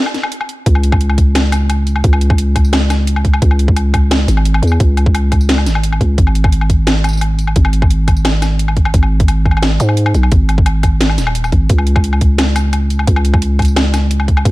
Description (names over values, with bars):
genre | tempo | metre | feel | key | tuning
half-time drum and bass | 174 BPM | 4/4 | half-time | unclear | A4 = 440 Hz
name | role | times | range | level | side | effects
drum and bass drum kit | drums | 0.1-14.5 s | hi-hat, snare drum, tambourine, woodblock | -18 LUFS | left 1 dB | overdrive
growling 808-style bass | bass | 0.7-14.5 s | D#1 to G#2 | -13 LUFS | equal | none
electronic kick drum | drums | 0.7-14.5 s | none | -12 LUFS | equal | overdrive
room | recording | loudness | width
little or no reverb | dark, warm production | -10 LUFS | side -19 dB against mid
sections
0.7-14.5 A section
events
break 0.0-0.7; drop 0.7-14.5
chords
none